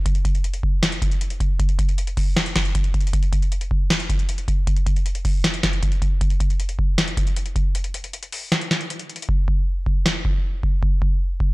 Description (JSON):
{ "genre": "hip hop", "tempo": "156 BPM", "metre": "4/4", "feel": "half-time", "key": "none", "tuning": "none", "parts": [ { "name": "booming analog drum machine", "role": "drums", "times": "0.1-11.5 s", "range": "hi-hat, kick drum, snare drum", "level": "-19 LUFS", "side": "equal", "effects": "vintage 12-bit sampler grit" } ], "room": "little or no reverb", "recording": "blown-out, overdriven recording, overdrive", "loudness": "-19 LUFS", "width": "side -22 dB against mid", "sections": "0.0-9.3 A section; 9.3-11.5 B section", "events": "break 7.7-9.3; hi-hats muted 9.3-11.5", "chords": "none" }